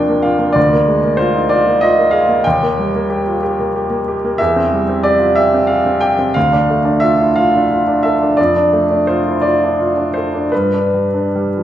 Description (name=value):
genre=classical, romantic character piece for solo piano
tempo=45-65 BPM (dotted quarters)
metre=6/8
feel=rubato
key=Eb major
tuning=A4 = 443 Hz
part: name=clear baby grand piano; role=solo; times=0.0-11.6 s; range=D2 to G5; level=-12 LUFS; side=equal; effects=none
room=wet recital hall reverb, RT60 1.3 s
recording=recorded in a church or concert hall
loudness=-12 LUFS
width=side -11 dB against mid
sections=0.0-11.6 A section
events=none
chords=0.0 Bb/Eb; 0.6 Bb7/D; 2.5 Eb; 4.4 C/E; 6.4 Dm; 8.4 Dm/F; 10.5 G